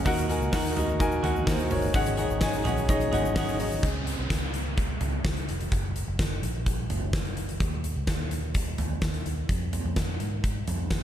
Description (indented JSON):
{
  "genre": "piano-driven pop",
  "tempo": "127 BPM",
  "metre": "4/4",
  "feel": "straight",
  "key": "Db major",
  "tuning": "A4 = 439 Hz",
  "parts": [
    { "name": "warm baby grand piano", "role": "accompaniment", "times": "0.0-3.9 s", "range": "Ab2 to Ab5", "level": "-27 LUFS", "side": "left 2 dB", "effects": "none" },
    { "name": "twelve-string electric guitar", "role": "riff", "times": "0.0-4.3 s", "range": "Ab2 to Ab4", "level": "-34 LUFS", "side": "right 8 dB", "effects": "none" },
    { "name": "vintage muted fingered electric bass", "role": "bass", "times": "0.0-11.0 s", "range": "F1 to Ab2", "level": "-31 LUFS", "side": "equal", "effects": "none" },
    { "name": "huge arena drum kit", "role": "drums", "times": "0.1-11.0 s", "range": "hi-hat, kick drum, snare drum, toms", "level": "-28 LUFS", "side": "equal", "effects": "none" },
    { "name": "egg shaker", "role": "percussion", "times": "0.1-3.8 s", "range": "none", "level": "-47 LUFS", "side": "left 10 dB", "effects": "none" },
    { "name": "downlifter", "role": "sound effects", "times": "3.8-7.6 s", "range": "none", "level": "-38 LUFS", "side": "right 1 dB", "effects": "none" }
  ],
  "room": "small room ambience",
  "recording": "none",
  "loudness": "-25 LUFS",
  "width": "side -10 dB against mid",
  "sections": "0.0-3.8 A section; 3.8-11.0 B section",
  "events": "none",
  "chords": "0.1 Ebm; 1.9 Ab7sus4; 3.8 Db5; 5.7 Gb; 7.6 N.C.; 9.5 Fm"
}